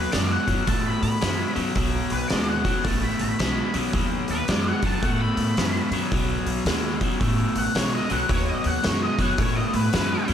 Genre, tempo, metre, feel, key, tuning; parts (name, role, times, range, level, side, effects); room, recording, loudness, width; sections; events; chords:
blues rock power trio and southern rock; 110 BPM; 4/4; swing 64% on 8ths; B mixolydian; A4 = 440 Hz
octave-fuzz lead guitar; melody; 0.0-10.3 s; B4 to B5; -29 LUFS; left 1 dB; wah, distortion
crunchy overdriven guitar; riff; 0.0-10.3 s; B2 to A3; -25 LUFS; left 1 dB; spring reverb
upright bass; bass; 0.0-10.3 s; A1 to A2; -28 LUFS; equal
oversized low-tuned drum kit; drums; 0.1-10.3 s; hi-hat, kick drum, snare drum; -27 LUFS; equal
light reverb; -21 LUFS; side -9 dB against mid
0.0-10.3 A section
lead electric guitar solo 0.0-10.3
0.0 B